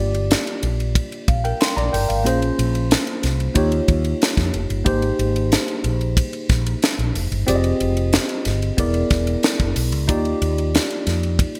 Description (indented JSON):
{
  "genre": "polished 1980s jazz-funk pop",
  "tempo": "92 BPM",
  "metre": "4/4",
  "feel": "straight",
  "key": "Eb major",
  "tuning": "A4 = 438 Hz",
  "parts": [
    { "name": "tine electric piano", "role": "accompaniment", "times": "0.0-11.6 s", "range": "Bb3 to C6", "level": "-25 LUFS", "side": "equal", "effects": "overdrive, lush chorus" },
    { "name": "mellow fretless electric bass", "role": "bass", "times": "0.0-11.4 s", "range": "E1 to F2", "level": "-24 LUFS", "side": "equal", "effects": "subtle chorus" },
    { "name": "tight funk drum kit", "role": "drums", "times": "0.1-11.6 s", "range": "hi-hat, kick drum, ride cymbal, snare drum", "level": "-23 LUFS", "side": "equal", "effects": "gated reverb" }
  ],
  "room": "light reverb, studio reverb",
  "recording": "bright 1980s-style digital production",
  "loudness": "-20 LUFS",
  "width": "mono",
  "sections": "0.0-11.6 A section",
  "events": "none",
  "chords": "0.0 Gm7; 2.3 Bbm9; 3.6 Eb9; 4.9 Abmaj9; 7.5 Fm9; 8.8 E7#11; 10.1 Ebmaj9"
}